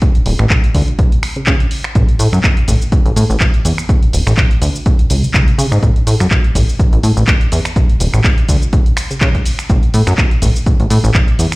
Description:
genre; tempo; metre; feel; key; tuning
filtered disco house; 124 BPM; 4/4; swing 55% on 16ths; A major; A4 = 440 Hz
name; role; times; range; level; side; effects
electronic kick drum; drums; 0.0-11.3 s; none; -12 LUFS; equal; none
punchy analog drum machine; drums; 0.0-11.6 s; cabasa, finger snaps, handclaps, hi-hat; -20 LUFS; equal; sidechain pumping on hats, sidechain pumping on perc
plucky analog bass; bass; 0.2-11.5 s; D1 to C#3; -13 LUFS; equal; tube saturation, sidechain pumping, low-pass filter
room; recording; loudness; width
little or no reverb; played on a big sound system in a bare room, large studio reverb; -10 LUFS; side -22 dB against mid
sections
0.0-11.6 A section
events
filter sweep on analog synth bass 0.0-11.6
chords
none

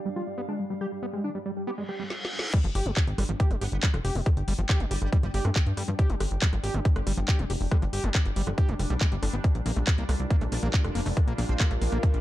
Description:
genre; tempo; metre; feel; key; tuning
psychedelic trance; 139 BPM; 4/4; straight; unclear; A4 = 440 Hz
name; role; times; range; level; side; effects
bubbling stepped-filter texture; sustained chords; 0.0-12.2 s; G3 to D4; -40 LUFS; equal; chorus, built-in reverb, sidechain pumping
warbly tape-like pad; texture; 0.0-12.2 s; F4 to G5; -42 LUFS; left 1 dB; chorus, built-in reverb, sidechain pumping
wide unison lead; melody; 0.1-2.0 s; G3 to G4; -34 LUFS; equal; phaser, vintage 12-bit sampler grit, sidechain pumping, digital delay
overdriven acid bass; riff; 0.1-12.1 s; F3 to G4; -35 LUFS; moving between left 4 dB and right 4 dB; distortion, auto-pan, cassette tape, sidechain pumping, digital delay
reverse cymbal; sound effects; 1.9-2.5 s; none; -33 LUFS; equal; none
drum and bass drum kit; drums; 2.1-12.2 s; crash cymbal, handclaps, hi-hat, rim click, snare drum; -33 LUFS; equal; none
electronic kick drum; drums; 2.5-12.1 s; none; -23 LUFS; equal; none
plucky analog bass; bass; 2.6-12.2 s; F1 to G2; -28 LUFS; equal; none
metallic wobble bass; second line; 3.6-5.4, 10.5-11.7 s; G3 to D4; -44 LUFS; right 2 dB; none
room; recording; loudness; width
digital ambience; dark, warm production; -24 LUFS; side -15 dB against mid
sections
0.0-2.5 A section; 2.5-12.2 B section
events
reverse cymbal 1.9-2.5; drum fill 2.1-2.5; drop 2.5-12.2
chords
0.0 G5; 9.4 Bb5

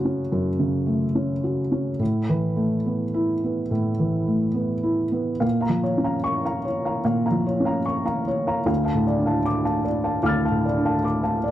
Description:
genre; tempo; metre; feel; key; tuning
neoclassical minimalist piano; 68-76 BPM; 4/4; rubato; unclear; A4 = 440 Hz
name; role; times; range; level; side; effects
felt-muted upright piano; solo; 0.0-11.5 s; D2 to A6; -21 LUFS; equal; none
room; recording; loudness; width
small room ambience; dry, close 1970s-style studio recording; -21 LUFS; side -12 dB against mid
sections
0.0-5.4 A section; 5.4-11.5 A section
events
none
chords
0.0 Gbm; 2.0 Asus2; 5.4 Bbm; 8.7 Dm

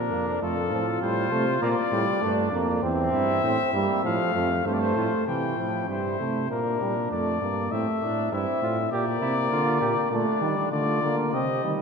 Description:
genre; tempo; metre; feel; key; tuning
classical, imitative canzona for brass ensemble; 99 BPM; 4/4; straight; Bb major; A4 = 440 Hz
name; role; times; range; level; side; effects
warm cornet; melody; 0.0-11.7 s; A4 to G5; -29 LUFS; left 7 dB; none
mellow flugelhorn; second line; 0.0-11.7 s; A3 to G4; -31 LUFS; right 3 dB; none
warm bass trombone; bass; 0.0-11.8 s; E2 to Eb3; -29 LUFS; right 1 dB; none
clear euphonium; accompaniment; 0.1-11.8 s; E3 to C4; -27 LUFS; right 2 dB; none
room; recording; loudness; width
wet church reverb, RT60 3.4 s; none; -23 LUFS; side -5 dB against mid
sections
0.0-5.3 A section; 5.3-11.8 B section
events
none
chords
0.4 F; 1.6 Bb; 2.8 C/E; 4.0 F; 5.3 C; 6.5 Bb; 7.7 Am; 8.9 Gm/Bb

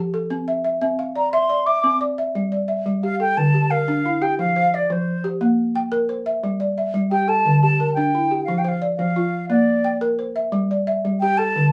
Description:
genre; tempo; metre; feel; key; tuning
west african traditional, West African string and xylophone music; 117 BPM (dotted quarters); 12/8; straight; unclear; A4 = 440 Hz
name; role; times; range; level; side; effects
balafon; arpeggios; 0.0-11.7 s; D3 to G5; -22 LUFS; equal; none
mellow hollow silver concert flute; melody; 1.2-11.7 s; C5 to D6; -23 LUFS; equal; none
room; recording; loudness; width
moderate booth ambience, RT60 0.2 s; none; -20 LUFS; mono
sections
0.0-2.3 A section; 2.3-11.7 B section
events
flute solo 0.0-2.3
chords
0.3 C; 2.3 G5; 3.4 Dm; 4.4 F5; 5.4 C7/Bb; 6.4 G5; 7.5 D5; 8.5 F5; 9.5 Bb; 10.5 G5

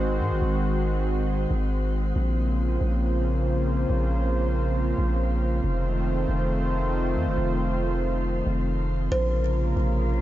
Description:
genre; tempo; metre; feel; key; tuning
hip hop, atmospheric cloud-rap; 138 BPM; 4/4; half-time; Bb minor; A4 = 436 Hz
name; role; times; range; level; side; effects
warm analog pad; sustained chords; 0.0-10.2 s; C3 to C5; -26 LUFS; equal; chorus
long sustained 808-style bass; bass; 0.0-10.2 s; F1 to Ab2; -25 LUFS; equal; none
kalimba; melody; 9.1-10.2 s; C5; -29 LUFS; equal; digital delay
room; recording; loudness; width
light reverb, small room ambience; nothing above 7.5 kHz; -22 LUFS; side -14 dB against mid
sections
0.0-9.1 A section; 9.1-10.2 B section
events
none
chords
0.0 Ab7; 2.2 Bbmadd9; 5.6 F7; 9.1 Bbmadd9

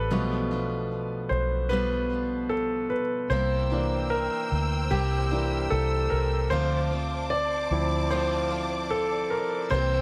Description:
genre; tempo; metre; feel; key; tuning
pop ballad; 75 BPM; 4/4; straight; D minor; A4 = 440 Hz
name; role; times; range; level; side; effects
warm concert grand piano; accompaniment; 0.0-10.0 s; B2 to D5; -30 LUFS; equal; none
picked steel-string acoustic guitar; arpeggios; 0.0-10.0 s; B2 to G4; -36 LUFS; equal; digital delay
vintage muted fingered electric bass; bass; 0.0-10.0 s; A1 to D2; -31 LUFS; equal; none
warm symphonic string section; sustained chords; 3.3-10.0 s; C5 to E6; -36 LUFS; equal; none
room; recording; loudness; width
light reverb, small room ambience; none; -27 LUFS; mono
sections
0.0-10.0 A section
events
grand piano solo 0.0-10.0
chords
0.1 G7/B; 3.3 C7; 6.5 Dm7

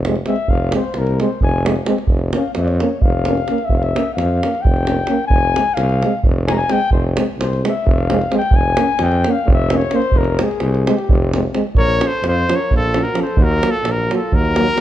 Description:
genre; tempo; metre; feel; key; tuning
balkan folk, Balkan brass band; 261 BPM (eighths); 7/8; straight; F harmonic minor, Bb harmonic minor from 11.7 s; A4 = 440 Hz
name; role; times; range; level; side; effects
clear tuba; bass; 0.0-14.7 s; F1 to F2; -19 LUFS; equal; none
davul; percussion; 0.0-14.8 s; none; -19 LUFS; right 1 dB; none
mellow trombone; accompaniment; 0.1-14.8 s; Bb3 to Db4; -25 LUFS; left 5 dB; none
warm euphonium; accompaniment; 0.1-14.8 s; F3 to Bb3; -24 LUFS; right 6 dB; none
mellow flugelhorn; second line; 0.3-14.8 s; F4 to Bb5; -22 LUFS; left 5 dB; none
mellow trumpet; melody; 11.8-14.8 s; A4 to Db5; -19 LUFS; equal; none
room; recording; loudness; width
light reverb; dark, warm production; -14 LUFS; side -12 dB against mid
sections
0.0-11.7 A section; 11.7-14.8 B section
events
flugelhorn solo 0.0-11.7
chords
0.0 Fm; 2.1 Bbm/F; 5.3 Fm; 8.5 Bbm/F; 10.1 Fm; 11.7 Bbm; 13.4 Ebm

